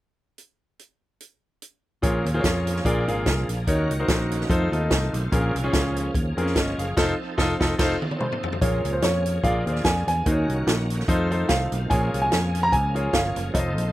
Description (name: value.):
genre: uptempo gospel.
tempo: 146 BPM.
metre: 4/4.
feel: swing 55% on 8ths.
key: Bb minor.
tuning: A4 = 440 Hz.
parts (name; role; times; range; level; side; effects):
swinging big-band drum kit; drums; 0.4-13.9 s; crash cymbal, hi-hat, kick drum, snare drum, toms; -25 LUFS; equal; none.
bright grand piano; accompaniment; 2.0-13.9 s; Bb2 to F5; -26 LUFS; left 1 dB; none.
bright tonewheel organ; sustained chords; 2.0-13.9 s; Eb3 to A4; -32 LUFS; right 2 dB; fast rotary speaker, overdrive, chorus vibrato.
fingered electric bass; bass; 2.0-13.9 s; F1 to F2; -26 LUFS; equal; none.
dark concert grand piano; melody; 8.2-13.9 s; C5 to Bb5; -26 LUFS; equal; slapback echo.
room: little or no reverb.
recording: recorded outdoors, with no room sound.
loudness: -21 LUFS.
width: side -15 dB against mid.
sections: 0.4-2.0 A section; 2.0-8.6 B section; 8.6-13.9 C section.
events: band accent 7.0-8.6; drum fill 7.8-8.6.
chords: 0.4 N.C.; 2.0 Bbm7; 2.9 Bb7; 3.7 Ebm7; 4.5 F7; 5.3 Bbm7; 7.0 F7; 8.6 Bbm7; 9.4 Bb7; 10.3 Ebm7; 11.1 F7; 11.9 Bbm7.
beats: | 0.38 0.79 1.21 1.62 | 2.03 2.44 2.85 3.27 | 3.68 4.09 4.50 4.91 | 5.32 5.74 6.15 6.56 | 6.97 7.38 7.79 8.20 | 8.61 9.03 9.44 9.85 | 10.26 10.67 11.08 11.49 | 11.90 12.31 12.72 13.14 | 13.55.